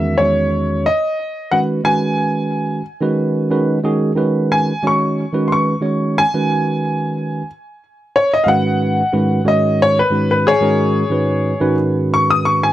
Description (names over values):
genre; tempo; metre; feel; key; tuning
jazz; 91 BPM; 4/4; straight; G# minor; A4 = 442 Hz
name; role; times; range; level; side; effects
bright baby grand piano; melody; 0.0-12.7 s; G#4 to D#6; -16 LUFS; left 1 dB; none
tine electric piano; accompaniment; 0.0-12.7 s; E2 to C#5; -16 LUFS; right 1 dB; lush chorus
room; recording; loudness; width
light reverb; dry, close 1970s-style studio recording; -14 LUFS; side -13 dB against mid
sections
0.0-3.5 A section; 3.5-12.7 B section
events
grand piano solo 3.5-12.7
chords
0.0 Emaj7; 0.9 G#m7; 8.5 C#7sus4/G#